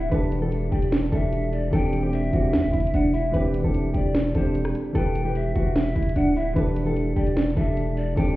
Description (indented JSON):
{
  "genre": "hip hop, trap",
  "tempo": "149 BPM",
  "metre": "4/4",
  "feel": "half-time",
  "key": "unclear",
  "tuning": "A4 = 441 Hz",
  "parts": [
    { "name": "mellow electric guitar", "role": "melody", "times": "0.0-8.4 s", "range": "D4 to B4", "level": "-28 LUFS", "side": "equal", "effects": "low-pass filter, ping-pong delay" },
    { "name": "breathy bright large pan pipes", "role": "second line", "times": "0.0-8.4 s", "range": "C5 to G5", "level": "-32 LUFS", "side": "left 1 dB", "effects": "ping-pong delay" },
    { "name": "dark grand piano", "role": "accompaniment", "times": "0.0-8.4 s", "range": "E3 to B4", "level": "-27 LUFS", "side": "equal", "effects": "low-pass filter" },
    { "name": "distorted 808-style bass", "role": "bass", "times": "0.0-8.4 s", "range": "D1 to E2", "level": "-24 LUFS", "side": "equal", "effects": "distortion" },
    { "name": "trap drum kit", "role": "drums", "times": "0.1-8.3 s", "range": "hi-hat, rim click, snare drum", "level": "-25 LUFS", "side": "right 1 dB", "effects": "none" }
  ],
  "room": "digital ambience",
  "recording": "heard muffled through a wall, stone room reverb, EQ",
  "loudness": "-21 LUFS",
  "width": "side -16 dB against mid",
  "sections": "0.0-8.4 A section",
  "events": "none",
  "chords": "0.1 Dsus4/E; 1.7 Cadd9/E; 5.0 Em; 6.6 Dsus4/E"
}